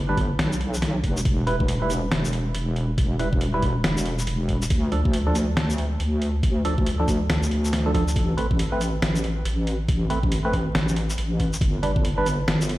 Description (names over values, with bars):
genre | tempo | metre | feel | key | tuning
deep dubstep | 139 BPM | 4/4 | swing 62% on 16ths, half-time | A minor | A4 = 440 Hz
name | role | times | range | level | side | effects
deep soft wobble bass | bass | 0.0-12.8 s | E1 to D2 | -24 LUFS | equal | chorus
percussive organ stab | stabs | 0.1-12.3 s | F3 to B4 | -28 LUFS | right 1 dB | chorus, dub echo
electronic kick drum | drums | 0.2-12.0 s | none | -24 LUFS | equal | none
trip hop sampler-style drum kit | drums | 0.2-12.8 s | hi-hat, shaker, snare drum | -28 LUFS | equal | none
room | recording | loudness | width
light reverb | played on a big sound system in a bare room, large studio reverb, vinyl crackle | -21 LUFS | side -16 dB against mid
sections
0.0-12.8 A section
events
none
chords
0.0 G; 1.3 Em; 4.7 Dm; 8.2 Amadd9; 11.6 G